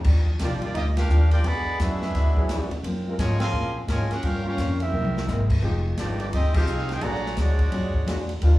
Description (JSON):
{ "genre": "jazz, big band swing", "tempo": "172 BPM", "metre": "4/4", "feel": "swing 63% on 8ths", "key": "Eb major", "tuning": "A4 = 440 Hz", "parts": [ { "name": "upright bass", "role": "bass", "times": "0.0-8.6 s", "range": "F1 to Bb2", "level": "-23 LUFS", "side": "equal", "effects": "none" }, { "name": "swinging big-band drum kit", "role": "drums", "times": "0.0-8.5 s", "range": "crash cymbal, hi-hat, kick drum, ride cymbal, snare drum, toms", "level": "-28 LUFS", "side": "equal", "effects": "none" }, { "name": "picked steel-string acoustic guitar", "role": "accompaniment", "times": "0.1-8.6 s", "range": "Gb2 to G4", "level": "-34 LUFS", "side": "left 4 dB", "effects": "none" }, { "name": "bright trumpet section", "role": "melody", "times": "0.4-8.3 s", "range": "Ab3 to C6", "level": "-30 LUFS", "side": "right 1 dB", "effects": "slapback echo" }, { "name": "bright trombone section", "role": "second line", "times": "0.4-8.3 s", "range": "Db3 to G4", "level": "-32 LUFS", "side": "right 3 dB", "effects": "slapback echo" }, { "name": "warm trombone section", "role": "sustained chords", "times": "0.4-3.2, 5.3-8.6 s", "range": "D3 to Bb4", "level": "-33 LUFS", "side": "left 1 dB", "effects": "none" } ], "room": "little or no reverb", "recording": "live gig heard through the venue's PA, club reverb", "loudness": "-21 LUFS", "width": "side -17 dB against mid", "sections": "0.0-8.6 A section", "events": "band accent 0.9, 3.4, 6.5; drum fill 4.9-5.3", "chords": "0.0 Ebmaj9; 1.4 E9; 2.8 Gbmaj9#11; 4.2 Gm7b5; 4.9 C7b13; 5.6 Fm9; 7.0 Bb7alt" }